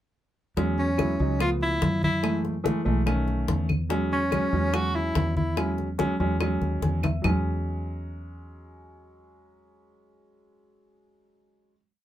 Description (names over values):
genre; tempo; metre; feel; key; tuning
Afro-Cuban jazz; 144 BPM; 4/4; straight; E major; A4 = 443 Hz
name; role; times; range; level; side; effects
warm concert grand piano; accompaniment; 0.6-11.7 s; D#3 to G#5; -28 LUFS; right 1 dB; none
fingered electric bass; bass; 0.6-11.7 s; B1 to F#2; -28 LUFS; equal; none
bongos; percussion; 0.6-7.3 s; none; -32 LUFS; left 6 dB; none
congas; percussion; 0.6-7.3 s; none; -30 LUFS; left 1 dB; none
breathy tenor saxophone; melody; 0.8-5.8 s; C#4 to F#4; -27 LUFS; equal; none
claves; percussion; 1.0-7.3 s; none; -36 LUFS; left 1 dB; none
room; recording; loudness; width
wet booth ambience, RT60 0.3 s; heard from further back in the room; -23 LUFS; side -12 dB against mid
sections
0.6-7.2 A section; 7.2-10.6 final chord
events
grand piano fill 6.6-7.2; drum fill 6.8-7.2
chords
0.6 E6; 1.4 C#7alt; 2.2 F#m9; 3.1 B7; 3.9 E6